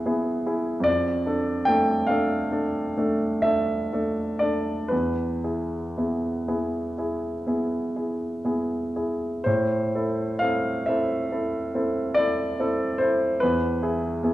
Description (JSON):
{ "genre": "classical, romantic nocturne for solo piano", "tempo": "37-50 BPM (dotted quarters)", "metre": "9/8", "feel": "rubato", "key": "A minor", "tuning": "A4 = 443 Hz", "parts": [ { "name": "warm grand piano", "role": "solo", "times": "0.0-14.3 s", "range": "E2 to G5", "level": "-23 LUFS", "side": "equal", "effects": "none" } ], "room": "moderate recital hall reverb, RT60 1.6 s", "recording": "none", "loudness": "-23 LUFS", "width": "side -15 dB against mid", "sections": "0.0-14.3 A section", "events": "none", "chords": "0.0 E; 0.9 Dm/F; 4.9 E; 9.5 Am; 13.4 E", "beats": "| 0.86 2.09 3.44 | 4.91 6.48 7.96 | 9.46 10.87 12.16 | 13.41" }